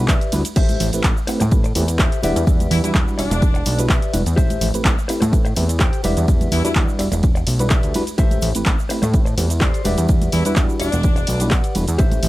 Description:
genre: filtered disco house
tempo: 126 BPM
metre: 4/4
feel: swing 53% on 16ths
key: unclear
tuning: A4 = 440 Hz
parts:
  - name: reed electric piano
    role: accompaniment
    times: 0.0-11.8 s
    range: G3 to F#5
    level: -24 LUFS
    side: equal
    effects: overdrive, fast tremolo, phaser, sidechain pumping
  - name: fat analog bass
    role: bass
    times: 0.0-12.3 s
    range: E1 to A2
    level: -21 LUFS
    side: equal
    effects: sidechain pumping
  - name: mellow electric guitar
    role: riff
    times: 0.1-12.3 s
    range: G4 to G5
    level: -27 LUFS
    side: left 2 dB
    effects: sidechain pumping
  - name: electronic kick drum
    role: drums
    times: 0.1-12.1 s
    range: none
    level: -18 LUFS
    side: equal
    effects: none
  - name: punchy analog drum machine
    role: drums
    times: 0.1-12.3 s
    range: crash cymbal, handclaps, hi-hat, ride cymbal, shaker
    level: -25 LUFS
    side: equal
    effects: sidechain pumping on hats, sidechain pumping on cymbals, sidechain pumping on perc
  - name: egg shaker and congas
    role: percussion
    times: 0.1-12.3 s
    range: none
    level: -27 LUFS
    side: right 3 dB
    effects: sidechain pumping on perc
  - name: warm horn section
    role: melody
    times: 2.7-6.7, 10.3-11.5 s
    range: D4 to E4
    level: -27 LUFS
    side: left 1 dB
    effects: sidechain pumping
room: digital ambience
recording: none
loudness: -15 LUFS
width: side -17 dB against mid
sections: 0.0-12.3 A section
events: none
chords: 0.0 Em7; 0.6 Am7; 2.2 Em7; 4.4 Am7; 6.0 Em7; 8.2 Am7; 9.9 Em7

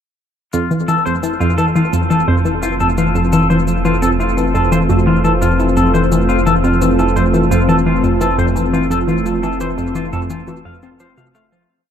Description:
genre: ambient, sequencer-driven space music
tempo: 86 BPM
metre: 4/4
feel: straight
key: F major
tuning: A4 = 440 Hz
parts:
  - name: sweeping resonant pad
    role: sustained chords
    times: 0.5-11.7 s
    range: A3 to F4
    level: -19 LUFS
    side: equal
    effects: chorus
  - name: clean electric guitar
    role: arpeggios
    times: 0.5-11.7 s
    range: F4 to F5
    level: -19 LUFS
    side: moving between left 4 dB and right 2 dB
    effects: auto-pan, ping-pong delay
  - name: analog pluck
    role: riff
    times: 0.5-11.6 s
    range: F2 to C4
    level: -16 LUFS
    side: equal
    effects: chorus, ping-pong delay
  - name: round analog bass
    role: bass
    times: 0.5-11.7 s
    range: F1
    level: -21 LUFS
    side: equal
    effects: none
  - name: cabasa and congas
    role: percussion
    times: 0.5-11.7 s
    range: none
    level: -32 LUFS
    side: left 2 dB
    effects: overdrive, ping-pong delay
room: moderate huge ambient reverb, RT60 9.2 s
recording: dark, warm production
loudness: -12 LUFS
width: side -8 dB against mid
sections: 0.5-11.7 A section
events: fade-in on analog synth pad 0.5-11.7; fade-out 8.0-11.7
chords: 0.5 F

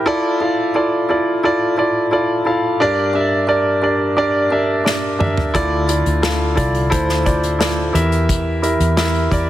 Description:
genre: piano-driven pop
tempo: 88 BPM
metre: 4/4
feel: straight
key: unclear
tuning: A4 = 440 Hz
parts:
  - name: warm grand piano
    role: accompaniment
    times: 0.0-9.5 s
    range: G2 to F5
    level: -16 LUFS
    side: equal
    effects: none
  - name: unplugged drum kit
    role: drums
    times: 4.9-9.5 s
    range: hi-hat, kick drum, snare drum, toms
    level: -21 LUFS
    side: left 1 dB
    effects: none
  - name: vintage muted fingered electric bass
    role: bass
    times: 5.5-9.5 s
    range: C2 to E2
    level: -19 LUFS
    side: left 1 dB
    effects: none
room: light reverb, small room ambience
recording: heavily compressed radio sound, multiband compression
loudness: -14 LUFS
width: side -13 dB against mid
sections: 0.0-9.5 A section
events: drum fill 4.9-5.5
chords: 0.1 Dmadd9; 2.8 Gm; 5.5 Dmadd9; 7.9 Edim

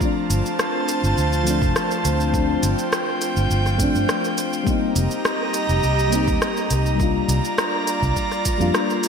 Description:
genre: sunset chillout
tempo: 103 BPM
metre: 4/4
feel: straight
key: unclear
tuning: A4 = 439 Hz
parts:
  - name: mellow FM electric piano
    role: accompaniment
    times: 0.0-9.1 s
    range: F3 to F4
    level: -24 LUFS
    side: moving between left 8 dB and right 2 dB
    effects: chorus, auto-pan, digital delay
  - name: airy breathy pad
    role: sustained chords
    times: 0.0-9.1 s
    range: F4 to Bb5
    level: -24 LUFS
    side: right 1 dB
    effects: chorus
  - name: electronic kick drum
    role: drums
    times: 0.0-8.6 s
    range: none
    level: -24 LUFS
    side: right 1 dB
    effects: studio reverb
  - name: smooth R&B drum kit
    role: drums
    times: 0.0-9.1 s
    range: hi-hat, rim click, shaker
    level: -26 LUFS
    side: equal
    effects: studio reverb, gated reverb
  - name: vintage muted fingered electric bass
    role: bass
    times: 0.3-8.7 s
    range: F1 to G2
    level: -21 LUFS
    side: right 1 dB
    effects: none
room: moderate lush hall reverb, RT60 2.0 s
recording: bright 1980s-style digital production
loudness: -18 LUFS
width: side -6 dB against mid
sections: 0.0-9.1 A section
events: none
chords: 0.0 G9sus4; 4.7 F9sus4 (rootless); 7.0 C9sus4

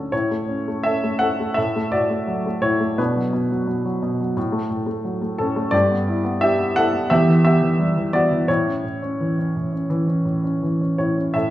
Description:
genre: classical, lyrical solo piano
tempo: 85 BPM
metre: 4/4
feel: rubato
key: unclear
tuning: A4 = 440 Hz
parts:
  - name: warm baby grand piano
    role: solo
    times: 0.0-11.5 s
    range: E2 to F#5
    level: -18 LUFS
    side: equal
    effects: none
room: wet recital hall reverb, RT60 1.5 s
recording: recorded in a church or concert hall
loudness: -18 LUFS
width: side -14 dB against mid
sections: 0.1-11.5 A section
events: none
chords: 0.1 A; 1.6 D/A; 3.0 Bm; 4.4 A6; 5.7 G6; 7.1 Emadd9; 8.5 A

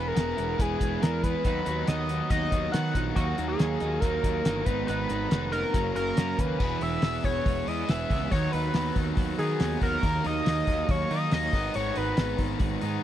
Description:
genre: indie rock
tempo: 140 BPM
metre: 4/4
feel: straight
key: unclear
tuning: A4 = 439 Hz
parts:
  - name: sync lead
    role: melody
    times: 0.0-12.4 s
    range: F#4 to F#5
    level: -30 LUFS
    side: equal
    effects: chorus, tape echo
  - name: overdriven electric guitar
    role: riff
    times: 0.0-13.0 s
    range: D#3 to G#4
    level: -34 LUFS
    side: left 7 dB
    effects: none
  - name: twelve-string electric guitar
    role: riff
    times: 0.0-13.0 s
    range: F#2 to E4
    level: -33 LUFS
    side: right 10 dB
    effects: analog chorus
  - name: fuzz picked electric bass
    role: bass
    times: 0.0-13.0 s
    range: E1 to D#3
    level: -31 LUFS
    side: equal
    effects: overdrive
  - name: cloth-damped thuddy drum kit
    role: drums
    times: 0.2-12.9 s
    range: crash cymbal, hi-hat, kick drum, snare drum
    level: -27 LUFS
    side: equal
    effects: none
room: little or no reverb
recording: dry, close 1970s-style studio recording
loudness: -24 LUFS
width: side -11 dB against mid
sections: 0.0-6.6 A section; 6.6-13.0 B section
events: none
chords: 0.0 E; 1.4 B/D#; 3.2 D#m; 4.7 G#m; 5.7 F#; 6.6 E; 8.3 B/D#; 10.0 D#m; 11.5 G#m

